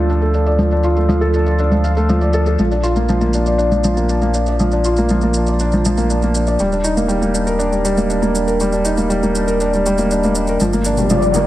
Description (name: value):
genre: piano and strings electronica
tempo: 120 BPM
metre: 4/4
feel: straight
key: unclear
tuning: A4 = 440 Hz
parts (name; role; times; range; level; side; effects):
- felt-muted upright piano; riff; 0.0-11.5 s; F3 to F5; -15 LUFS; equal; digital delay
- warm sub bass; bass; 0.0-11.5 s; Eb1 to D2; -19 LUFS; equal; none
- shaker; drums; 0.1-11.4 s; none; -29 LUFS; right 2 dB; overdrive, low-pass filter on perc
- riser; sound effects; 10.9-11.5 s; none; -21 LUFS; left 1 dB; none
- warm velvety synth lead; melody; 11.1-11.5 s; D5; -17 LUFS; left 3 dB; chorus
room: moderate lush hall reverb, RT60 2.1 s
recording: none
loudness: -14 LUFS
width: side -14 dB against mid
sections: 0.0-10.6 A section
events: riser 10.9-11.5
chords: 0.0 Dm; 2.6 Bb; 6.6 Ebmaj7; 10.6 Gm7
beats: 0.10 | 0.60 1.10 1.60 2.10 | 2.60 3.10 3.60 4.10 | 4.60 5.10 5.60 6.10 | 6.60 7.10 7.60 8.10 | 8.60 9.10 9.60 10.10 | 10.60 11.10